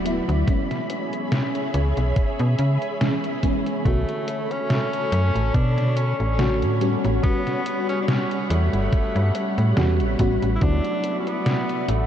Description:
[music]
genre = vaporwave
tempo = 71 BPM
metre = 4/4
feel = swing 55% on 16ths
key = unclear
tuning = A4 = 440 Hz
[part]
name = FM electric piano with soft pad layer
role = accompaniment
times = 0.0-12.1 s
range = D3 to C#5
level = -27 LUFS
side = left 1 dB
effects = ensemble chorus, ping-pong delay
[part]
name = soft string machine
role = sustained chords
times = 0.0-12.1 s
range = G3 to B5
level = -29 LUFS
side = right 1 dB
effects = ensemble chorus
[part]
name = slap-like FM bass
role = bass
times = 0.0-12.1 s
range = D1 to C#3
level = -21 LUFS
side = equal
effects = none
[part]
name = detuned 8-bit digital drum machine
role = drums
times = 0.1-12.1 s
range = hi-hat, snare drum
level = -28 LUFS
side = equal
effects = studio reverb
[part]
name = electronic kick drum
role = drums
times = 0.5-10.8 s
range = none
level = -22 LUFS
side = equal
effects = studio reverb
[part]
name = clear tenor saxophone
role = melody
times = 3.9-12.1 s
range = A3 to E4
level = -28 LUFS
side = equal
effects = tape echo
[sound]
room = moderate huge ambient reverb, RT60 5.9 s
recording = dreamy mix soaked in reverb, cassette tape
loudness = -20 LUFS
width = side -10 dB against mid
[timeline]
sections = 0.0-12.1 A section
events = none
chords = 0.5 C#m7; 3.9 Bm9; 6.8 A13; 10.6 D69

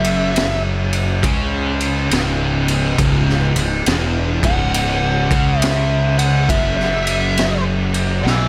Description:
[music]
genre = stoner and doom metal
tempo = 68 BPM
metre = 4/4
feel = swing 65% on 8ths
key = C# minor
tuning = A4 = 439 Hz
[part]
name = fuzz lead guitar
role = melody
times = 0.0-8.5 s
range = E5 to G#5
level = -24 LUFS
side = equal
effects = wah, distortion, digital delay
[part]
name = thick fuzz guitar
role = riff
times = 0.0-8.5 s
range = C#2 to C#3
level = -26 LUFS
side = equal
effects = none
[part]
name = thick fuzz guitar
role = riff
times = 0.0-8.5 s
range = C#2 to C#3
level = -26 LUFS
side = equal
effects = none
[part]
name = thick fuzz guitar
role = riff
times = 0.0-8.5 s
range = C#2 to C#3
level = -26 LUFS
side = equal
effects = distortion
[part]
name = fuzz fingered electric bass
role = bass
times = 0.0-8.5 s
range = C#1 to C#2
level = -24 LUFS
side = equal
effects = overdrive
[part]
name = raw garage drum kit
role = drums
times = 0.0-8.5 s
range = kick drum, ride cymbal, snare drum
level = -23 LUFS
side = equal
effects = none
[sound]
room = little or no reverb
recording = none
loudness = -17 LUFS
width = mono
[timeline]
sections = 0.0-8.5 A section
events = lead electric guitar solo 0.0-8.5; drum fill 8.2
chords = 0.0 C#m

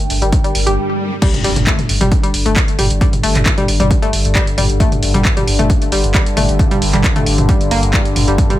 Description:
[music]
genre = driving peak-time techno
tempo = 134 BPM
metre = 4/4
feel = straight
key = G minor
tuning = A4 = 439 Hz
[part]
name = analog drone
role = drone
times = 0.0-8.6 s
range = G2 to D3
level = -20 LUFS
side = left 1 dB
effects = chorus, sidechain pumping
[part]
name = punchy analog drum machine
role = drums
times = 0.0-8.6 s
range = crash cymbal, handclaps, hi-hat, toms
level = -18 LUFS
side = right 1 dB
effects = sidechain pumping on hats, sidechain pumping on cymbals, sidechain pumping on toms
[part]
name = airy breathy pad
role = texture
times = 0.0-0.8 s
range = D4 to G5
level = -26 LUFS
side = right 1 dB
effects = chorus, sidechain pumping
[part]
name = saturated sub bass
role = bass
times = 0.1-8.4 s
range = G1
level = -18 LUFS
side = equal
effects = tube saturation, sidechain pumping, low-pass filter
[part]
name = analog pluck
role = riff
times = 0.2-8.6 s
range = G3 to G4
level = -20 LUFS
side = left 1 dB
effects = chorus, sidechain pumping, ping-pong delay
[part]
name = electronic kick drum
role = drums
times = 0.3-8.5 s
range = none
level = -15 LUFS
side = equal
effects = none
[part]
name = swell and impact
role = sound effects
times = 0.5-3.0 s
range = none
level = -23 LUFS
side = equal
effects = none
[sound]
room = light reverb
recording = none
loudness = -12 LUFS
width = side -14 dB against mid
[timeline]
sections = 0.0-1.2 A section; 1.2-8.6 B section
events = swell 0.5-1.2; stop 0.8-1.2; drop 1.2-8.6; impact 1.2-3.0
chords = 0.0 Gm; 1.2 G5

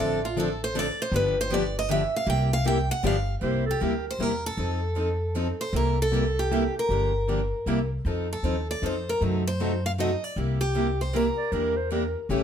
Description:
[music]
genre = acoustic string swing (jazz manouche)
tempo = 156 BPM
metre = 3/4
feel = swing 63% on 8ths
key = C mixolydian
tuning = A4 = 440 Hz
[part]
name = picked steel-string acoustic guitar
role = melody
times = 0.0-12.3 s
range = F4 to G5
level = -28 LUFS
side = equal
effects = slapback echo
[part]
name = picked plugged-in steel-string acoustic guitar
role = accompaniment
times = 0.0-12.4 s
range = C3 to A4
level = -29 LUFS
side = left 3 dB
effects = none
[part]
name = picked steel-string acoustic guitar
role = accompaniment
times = 0.0-12.4 s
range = C3 to Bb4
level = -34 LUFS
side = right 5 dB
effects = none
[part]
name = upright bass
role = bass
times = 0.0-12.4 s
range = G1 to F#2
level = -28 LUFS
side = equal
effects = none
[part]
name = warm clarinet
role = second line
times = 3.4-4.1, 11.4-12.2 s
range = A4 to D5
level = -31 LUFS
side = right 4 dB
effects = none
[sound]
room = moderate studio reverb, RT60 0.7 s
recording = none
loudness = -24 LUFS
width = side -8 dB against mid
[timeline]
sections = 0.0-3.4 A section; 3.4-12.4 B section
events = steel-string acoustic guitar solo 0.0-3.4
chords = 0.0 Dm7; 1.1 G7; 2.3 C7; 3.0 G7; 3.4 C7; 4.6 F7; 5.7 C7; 6.9 Gm7; 7.7 C7; 8.1 F7; 9.2 F#dim7; 10.4 C7; 11.5 Em7b5

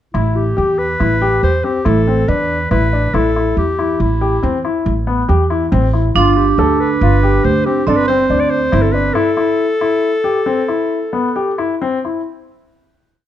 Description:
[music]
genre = contemporary instrumental, chamber music in an uneven meter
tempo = 140 BPM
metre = 7/4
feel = straight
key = A minor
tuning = A4 = 439 Hz
[part]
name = clear clarinet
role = melody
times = 0.1-11.8 s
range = E4 to D5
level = -18 LUFS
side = left 1 dB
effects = none
[part]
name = warm concert grand piano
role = arpeggios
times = 0.1-12.2 s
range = B3 to A4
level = -18 LUFS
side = left 4 dB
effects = none
[part]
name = upright bass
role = bass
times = 0.1-9.1 s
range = G1 to E2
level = -16 LUFS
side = right 2 dB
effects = none
[part]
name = vibraphone with hard mallets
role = second line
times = 6.2-9.1 s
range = C4 to D4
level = -17 LUFS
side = right 9 dB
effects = none
[sound]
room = light reverb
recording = dark, warm production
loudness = -13 LUFS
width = side -11 dB against mid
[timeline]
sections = 0.1-12.3 A section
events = slowing down 8.7-12.3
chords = 0.1 A7sus2; 6.2 G7sus4; 9.2 A5

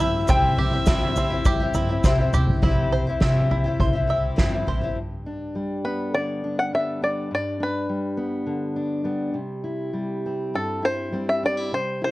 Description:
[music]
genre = indie folk with a building arrangement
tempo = 102 BPM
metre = 4/4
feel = straight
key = G major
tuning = A4 = 440 Hz
[part]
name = bluegrass banjo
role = melody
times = 0.0-2.0, 5.9-12.1 s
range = A4 to A5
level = -24 LUFS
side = left 1 dB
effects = none
[part]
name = rich fiddle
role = second line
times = 0.0-2.0 s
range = E5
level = -30 LUFS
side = right 2 dB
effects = none
[part]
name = picked twelve-string acoustic guitar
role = accompaniment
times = 0.0-5.0 s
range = C3 to G4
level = -26 LUFS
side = left 4 dB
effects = none
[part]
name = bluegrass banjo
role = arpeggios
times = 0.0-5.0 s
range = C4 to E5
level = -29 LUFS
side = right 4 dB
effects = none
[part]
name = upright bass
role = bass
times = 0.0-4.9 s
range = A1 to C3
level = -25 LUFS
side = equal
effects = none
[part]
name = soft-mallet drum kit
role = drums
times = 0.3-4.8 s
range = kick drum, snare drum, toms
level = -22 LUFS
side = equal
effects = none
[part]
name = tube shaker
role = percussion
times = 0.3-2.5 s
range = none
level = -39 LUFS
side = left 4 dB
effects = none
[part]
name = fingerpicked steel-string acoustic guitar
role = accompaniment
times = 4.9-12.1 s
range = G2 to E4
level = -27 LUFS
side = left 1 dB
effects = none
[sound]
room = light reverb, small room reverb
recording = worn, warbling old tape, cassette tape, warbly pitch drift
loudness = -21 LUFS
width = side -18 dB against mid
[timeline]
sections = 0.0-2.6 A section; 2.6-5.0 B section; 5.0-12.1 C section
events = drum fill 2.0-2.6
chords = 0.0 C; 5.0 G; 9.4 C

